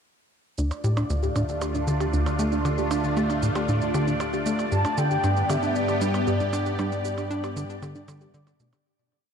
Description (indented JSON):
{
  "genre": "ambient, sequencer-driven space music",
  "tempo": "116 BPM",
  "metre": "4/4",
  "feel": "straight",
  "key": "D dorian",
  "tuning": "A4 = 441 Hz",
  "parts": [
    { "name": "lush unison pad", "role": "sustained chords", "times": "1.0-8.8 s", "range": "A3 to G4", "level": "-30 LUFS", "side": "equal", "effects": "chorus, phaser, shimmer reverb" },
    { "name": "soft round pluck", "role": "arpeggios", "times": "0.6-8.8 s", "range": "A3 to D5", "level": "-31 LUFS", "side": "moving between left 3 dB and right 7 dB", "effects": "chorus, auto-pan, shimmer reverb, ping-pong delay" },
    { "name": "tight sequencer bass", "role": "riff", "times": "0.6-8.7 s", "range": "D2 to D4", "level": "-27 LUFS", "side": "left 1 dB", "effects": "ping-pong delay" },
    { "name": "analog drone", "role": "bass", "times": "1.3-8.8 s", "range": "D2 to G2", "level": "-32 LUFS", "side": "equal", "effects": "chorus" },
    { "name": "shaker and percussion blips", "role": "percussion", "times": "0.6-8.8 s", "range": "none", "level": "-38 LUFS", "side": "right 4 dB", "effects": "ping-pong delay" },
    { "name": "bubbling stepped-filter texture", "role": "texture", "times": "0.6-8.9 s", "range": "D5", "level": "-35 LUFS", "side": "right 3 dB", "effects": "chorus, built-in reverb, shimmer reverb" },
    { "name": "breathy flute-like synth lead", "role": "melody", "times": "4.7-8.3 s", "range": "D5 to A5", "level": "-28 LUFS", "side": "left 1 dB", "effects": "ensemble chorus, shimmer reverb, ping-pong delay" }
  ],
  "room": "moderate huge ambient reverb, RT60 8.6 s",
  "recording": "cassette tape",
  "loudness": "-22 LUFS",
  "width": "side -7 dB against mid",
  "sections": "0.6-8.9 A section",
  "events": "fade-out 6.1-8.9",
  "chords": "0.6 Dm; 4.7 G"
}